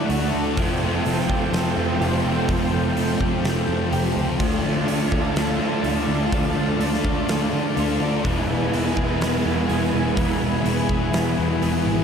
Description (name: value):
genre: rock, shoegaze and dream pop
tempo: 125 BPM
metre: 4/4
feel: straight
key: unclear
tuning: A4 = 440 Hz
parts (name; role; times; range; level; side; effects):
- lush unison pad; sustained chords; 0.0-12.0 s; E4 to A5; -28 LUFS; equal; chorus
- direct-recorded clean electric guitar; arpeggios; 0.0-12.0 s; E3 to G#4; -31 LUFS; right 6 dB; ensemble chorus, diffuse ambient delay
- biting overdriven guitar; riff; 0.0-12.0 s; D3 to F#4; -26 LUFS; right 7 dB; reverse reverb
- thick fuzz guitar; riff; 0.0-12.0 s; E2 to D4; -24 LUFS; left 7 dB; distortion, analog chorus
- vintage muted picked electric bass; bass; 0.0-12.0 s; E1 to D3; -27 LUFS; equal; none
- huge arena drum kit; drums; 0.1-11.7 s; hi-hat, kick drum, snare drum; -28 LUFS; equal; none
room: wet huge ambient reverb, RT60 4.2 s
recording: dreamy mix soaked in reverb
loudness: -19 LUFS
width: side -7 dB against mid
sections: 0.0-12.0 A section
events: none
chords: 0.0 Dadd9; 0.6 Fadd9; 4.4 Dm; 8.2 E